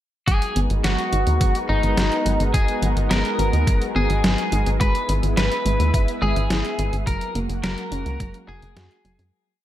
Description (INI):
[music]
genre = synthwave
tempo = 106 BPM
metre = 4/4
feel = straight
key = G# minor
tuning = A4 = 440 Hz
[part]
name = lightly driven lead guitar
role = melody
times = 0.3-9.2 s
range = D#4 to B4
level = -25 LUFS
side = left 1 dB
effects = ping-pong delay
[part]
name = analog string pad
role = sustained chords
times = 0.3-9.3 s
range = G#3 to A#4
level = -28 LUFS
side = equal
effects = ensemble chorus, sidechain pumping
[part]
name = warbly dusty pluck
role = arpeggios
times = 0.3-9.3 s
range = F#3 to E5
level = -31 LUFS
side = right 2 dB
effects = chorus, tape echo
[part]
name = tight sequencer bass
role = bass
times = 0.3-9.3 s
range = F#1 to F#2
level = -22 LUFS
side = equal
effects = sidechain pumping
[part]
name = detuned 8-bit digital drum machine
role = drums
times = 0.3-9.3 s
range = hi-hat, snare drum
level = -26 LUFS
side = left 1 dB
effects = none
[part]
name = electronic kick drum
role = drums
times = 0.3-8.3 s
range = none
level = -21 LUFS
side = equal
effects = none
[sound]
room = light reverb, digital ambience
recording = none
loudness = -18 LUFS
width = side -12 dB against mid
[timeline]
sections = 0.3-9.3 verse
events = filter sweep on synth arpeggio sound 0.3-9.3; fade-out 6.3-9.3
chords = 0.3 G#m7; 4.8 E/G#; 7.1 F#add9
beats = | 0.28 0.84 1.41 1.98 | 2.54 3.11 3.67 4.24 | 4.80 5.37 5.94 6.50 | 7.07 7.64 8.20 8.77